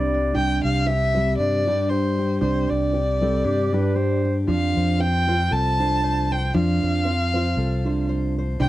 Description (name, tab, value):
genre	acoustic folk duo or small band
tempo	116 BPM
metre	4/4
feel	swing 56% on 8ths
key	unclear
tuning	A4 = 439 Hz
part	mellow clarinet	second line	0.0-4.4 s	G4 to D5	-27 LUFS	right 1 dB	none
part	fingerpicked steel-string acoustic guitar	accompaniment	0.0-8.7 s	G2 to C5	-26 LUFS	left 3 dB	none
part	dark upright piano	arpeggios	0.0-8.7 s	C4 to D4	-27 LUFS	right 5 dB	none
part	fingered electric bass	bass	0.0-8.7 s	C2 to G2	-24 LUFS	equal	none
part	dark violin	melody	0.4-8.7 s	C5 to A5	-24 LUFS	left 1 dB	none
room	moderate studio reverb, RT60 0.6 s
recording	dark, warm production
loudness	-19 LUFS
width	side -15 dB against mid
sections	0.4-8.7 A section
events	none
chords	0.4 Csus2; 4.5 F